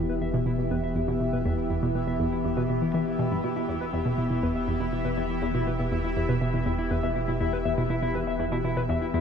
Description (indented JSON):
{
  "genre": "ambient, sequencer-driven space music",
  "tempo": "121 BPM",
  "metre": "4/4",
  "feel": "straight",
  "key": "E minor",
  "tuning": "A4 = 440 Hz",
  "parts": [
    { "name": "evolving wavetable pad", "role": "sustained chords", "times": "0.0-9.2 s", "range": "E3 to G4", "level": "-30 LUFS", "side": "left 2 dB", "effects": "chorus, built-in reverb" },
    { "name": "analog pluck", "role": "riff", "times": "0.0-9.2 s", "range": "E2 to E3", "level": "-28 LUFS", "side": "right 1 dB", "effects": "chorus, tape echo" },
    { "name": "warm sub bass", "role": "bass", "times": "0.0-9.2 s", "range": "E1", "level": "-36 LUFS", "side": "equal", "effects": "none" },
    { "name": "bubbling stepped-filter texture", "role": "texture", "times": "0.0-9.2 s", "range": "E4 to E5", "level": "-34 LUFS", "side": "right 1 dB", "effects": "chorus, built-in reverb" },
    { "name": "mellow electric guitar", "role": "arpeggios", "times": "0.1-9.2 s", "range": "E4 to B5", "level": "-34 LUFS", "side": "moving between left 6 dB and equal", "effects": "auto-pan, tape echo" }
  ],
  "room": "moderate huge ambient reverb, RT60 8.5 s",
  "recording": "dark, warm production, nothing above 10.3 kHz",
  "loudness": "-24 LUFS",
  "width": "side -7 dB against mid",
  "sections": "0.0-9.2 A section",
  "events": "fade-in on clean electric guitar 0.0-9.2; filter sweep on synth arpeggio sound 0.0-9.2",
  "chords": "0.0 Em"
}